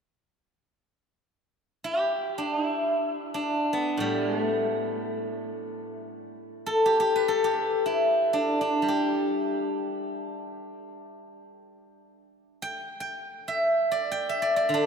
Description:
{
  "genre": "chinese traditional, Chinese solo plucked strings",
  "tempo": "free time",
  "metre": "none",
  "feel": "none",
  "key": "D zhi mode",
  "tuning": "A4 = 443 Hz",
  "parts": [
    { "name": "steel-string zither", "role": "solo", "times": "1.8-14.9 s", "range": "A2 to G5", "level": "-25 LUFS", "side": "equal", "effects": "none" }
  ],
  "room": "wet cathedral reverb, RT60 5.0 s",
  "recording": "in a vast, echoing space",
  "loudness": "-24 LUFS",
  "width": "side -6 dB against mid",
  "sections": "0.9-14.9 A section",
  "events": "none",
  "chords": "none"
}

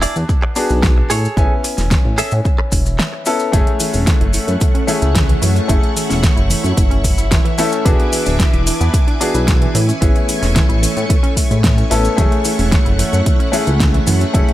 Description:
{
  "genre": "nu-disco, nu disco",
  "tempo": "111 BPM",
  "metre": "4/4",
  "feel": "straight",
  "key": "F# minor",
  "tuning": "A4 = 440 Hz",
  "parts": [
    { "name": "bright baby grand piano", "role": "accompaniment", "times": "0.0-14.5 s", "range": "A3 to G#5", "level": "-21 LUFS", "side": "left 2 dB", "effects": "sidechain pumping, digital delay" },
    { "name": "direct-recorded clean electric guitar", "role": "riff", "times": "0.0-3.2 s", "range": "E4 to E5", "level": "-22 LUFS", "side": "right 2 dB", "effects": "wide subtle chorus, digital delay" },
    { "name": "chorused synth bass", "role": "bass", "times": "0.0-14.4 s", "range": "D1 to A2", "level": "-16 LUFS", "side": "equal", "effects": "none" },
    { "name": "pop drum kit", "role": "drums", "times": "0.0-14.5 s", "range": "hi-hat, snare drum", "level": "-22 LUFS", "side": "equal", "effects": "studio reverb" },
    { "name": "cabasa", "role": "percussion", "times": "0.0-14.5 s", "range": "none", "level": "-27 LUFS", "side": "left 4 dB", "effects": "none" },
    { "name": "electronic kick drum", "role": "drums", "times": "0.3-14.5 s", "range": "none", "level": "-15 LUFS", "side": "equal", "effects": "studio reverb" },
    { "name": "string machine, full ensemble", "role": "sustained chords", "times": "3.5-14.5 s", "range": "A3 to D6", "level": "-23 LUFS", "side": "left 1 dB", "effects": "ensemble chorus, sidechain pumping" },
    { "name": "analog pluck", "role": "arpeggios", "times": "3.5-14.5 s", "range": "E3 to E4", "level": "-25 LUFS", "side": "right 4 dB", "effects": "chorus, sidechain pumping, tape echo" }
  ],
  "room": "digital ambience",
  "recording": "none",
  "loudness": "-12 LUFS",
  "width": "side -14 dB against mid",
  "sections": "0.0-14.5 A section",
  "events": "none",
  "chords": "0.0 E7; 1.1 Amaj7; 3.5 F#m7; 7.9 E7; 9.8 Amaj7; 12.2 F#m7"
}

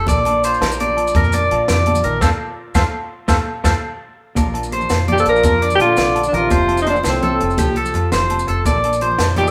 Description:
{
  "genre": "highlife guitar band",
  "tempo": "112 BPM (dotted quarters)",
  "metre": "12/8",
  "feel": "straight",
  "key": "Bb major",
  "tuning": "A4 = 440 Hz",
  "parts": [
    { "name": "semi-hollow electric guitar", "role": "accompaniment", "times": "0.0-9.5 s", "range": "Bb2 to C5", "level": "-29 LUFS", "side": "equal", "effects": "none" },
    { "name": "electric guitar at the edge of break-up", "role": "arpeggios", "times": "0.0-9.5 s", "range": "G4 to F5", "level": "-21 LUFS", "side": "equal", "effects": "spring reverb" },
    { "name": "fingered electric bass", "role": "bass", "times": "0.0-9.5 s", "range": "F1 to Bb2", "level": "-24 LUFS", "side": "equal", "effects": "none" },
    { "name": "compact cocktail drum kit", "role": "drums", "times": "0.1-9.5 s", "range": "hi-hat, kick drum, snare drum", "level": "-23 LUFS", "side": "equal", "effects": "none" },
    { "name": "agogo bells", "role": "percussion", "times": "0.1-9.4 s", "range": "none", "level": "-30 LUFS", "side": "equal", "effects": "none" },
    { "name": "congas", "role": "percussion", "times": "0.1-9.5 s", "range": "none", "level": "-29 LUFS", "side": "equal", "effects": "none" },
    { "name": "maracas", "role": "percussion", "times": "0.1-9.5 s", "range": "none", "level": "-36 LUFS", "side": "equal", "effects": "none" },
    { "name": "breathy alto saxophone", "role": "melody", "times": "5.1-9.5 s", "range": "C4 to Bb4", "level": "-18 LUFS", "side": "equal", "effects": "none" },
    { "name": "clear trombone", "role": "second line", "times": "5.1-9.5 s", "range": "A2 to F3", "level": "-29 LUFS", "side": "equal", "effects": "none" }
  ],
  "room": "wet studio reverb, RT60 0.7 s",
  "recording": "band playing live in one room",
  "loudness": "-17 LUFS",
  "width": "mono",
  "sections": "0.0-4.4 A section; 4.4-9.5 B section",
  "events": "band accent 2.2-4.4",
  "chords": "0.1 Bb; 2.2 F; 4.4 Bb; 6.5 F; 8.7 Bb"
}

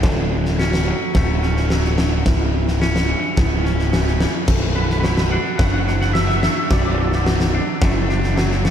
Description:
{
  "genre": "post-rock",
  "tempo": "108 BPM",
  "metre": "4/4",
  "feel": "straight",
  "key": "B minor",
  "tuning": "A4 = 443 Hz",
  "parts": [
    { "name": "overdriven tine electric piano", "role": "arpeggios", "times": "0.0-8.7 s", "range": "D4 to A4", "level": "-29 LUFS", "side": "right 4 dB", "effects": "fast tremolo, ping-pong delay" },
    { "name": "twangy electric guitar", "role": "arpeggios", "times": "0.0-8.7 s", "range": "B1 to D4", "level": "-27 LUFS", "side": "left 1 dB", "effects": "ping-pong delay" },
    { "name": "fuzz picked electric bass", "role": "bass", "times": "0.0-8.7 s", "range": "B0 to F#1", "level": "-19 LUFS", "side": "equal", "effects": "overdrive" },
    { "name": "huge arena drum kit", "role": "drums", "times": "0.0-8.7 s", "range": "crash cymbal, kick drum, snare drum", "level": "-19 LUFS", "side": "equal", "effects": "none" },
    { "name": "twangy electric guitar", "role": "melody", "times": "4.8-7.2 s", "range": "B4 to F#5", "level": "-25 LUFS", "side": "right 1 dB", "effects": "lush chorus, ping-pong delay" }
  ],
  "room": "light reverb, small room ambience",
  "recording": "none",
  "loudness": "-16 LUFS",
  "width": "side -9 dB against mid",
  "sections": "0.0-4.5 A section; 4.5-8.7 B section",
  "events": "none",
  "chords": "0.0 Dmaj7; 2.3 C#m7; 4.5 Bm7"
}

